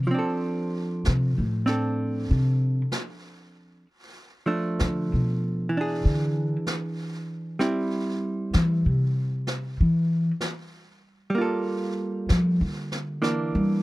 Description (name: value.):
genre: jazz ballad.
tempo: 64 BPM.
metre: 4/4.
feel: swing 66% on 8ths.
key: F major.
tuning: A4 = 441 Hz.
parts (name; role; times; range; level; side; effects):
archtop guitar, miked and amplified; accompaniment; 0.0-13.8 s; E3 to A4; -27 LUFS; right 1 dB; none.
upright bass; bass; 0.0-13.8 s; A2 to G3; -23 LUFS; equal; none.
brushed snare drum and snare drum; drums; 0.1-13.8 s; none; -35 LUFS; equal; none.
room: little or no reverb.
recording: none.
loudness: -23 LUFS.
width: side -19 dB against mid.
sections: 0.1-13.8 A section.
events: upright bass solo 0.1-13.8.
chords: 0.1 F6; 3.9 Bm7b5; 5.7 E7; 7.6 C; 11.4 Gm9; 13.2 Em7b5.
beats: | 0.10 1.04 1.98 2.92 | 3.86 4.80 5.74 6.67 | 7.61 8.54 9.48 10.42 | 11.35 12.29 13.22.